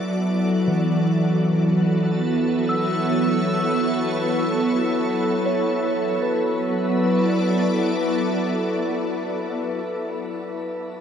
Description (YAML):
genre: ambient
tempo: free time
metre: none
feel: none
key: B minor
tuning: A4 = 439 Hz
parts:
  - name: soft additive organ-like pad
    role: sustained chords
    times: 0.0-9.5 s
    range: F#3 to D5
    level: -21 LUFS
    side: equal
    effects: ensemble chorus, built-in reverb
  - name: muted felt-like synth keys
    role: arpeggios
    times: 0.7-11.0 s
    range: E3 to E6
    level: -25 LUFS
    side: equal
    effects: chorus, diffuse ambient delay
room: wet shimmer reverb, RT60 8.7 s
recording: none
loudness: -19 LUFS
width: side -8 dB against mid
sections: 0.0-6.2 A section; 6.2-8.8 B section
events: none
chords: 0.0 Bm; 1.1 F#m7; 3.7 A; 6.2 Bm